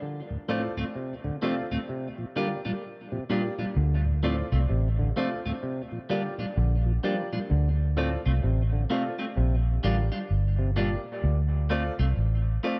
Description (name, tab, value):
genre	reggae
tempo	64 BPM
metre	4/4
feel	swing 62% on 16ths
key	D minor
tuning	A4 = 439 Hz
part	mellow clav	arpeggios	0.0-11.0 s	A2 to F3	-38 LUFS	equal	dub echo
part	mellow tonewheel organ	accompaniment	0.3-7.4 s	D2 to D4	-38 LUFS	equal	overdrive, chorus vibrato, slow rotary speaker, dub echo
part	clean electric guitar	accompaniment	0.5-12.8 s	G3 to F4	-36 LUFS	equal	dub echo
part	dark grand piano	stabs	0.5-12.8 s	F4 to D5	-38 LUFS	equal	dub echo
part	vintage muted fingered electric bass	bass	3.8-12.6 s	G1 to D2	-26 LUFS	equal	none
room	light reverb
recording	dark, warm production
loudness	-27 LUFS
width	mono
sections	0.0-12.8 A section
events	break 0.0-3.8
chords	0.0 Dm7; 1.9 Bb6; 3.8 Dm7; 5.6 Bb6; 7.5 Dm7; 9.4 Bb6; 11.2 Dm7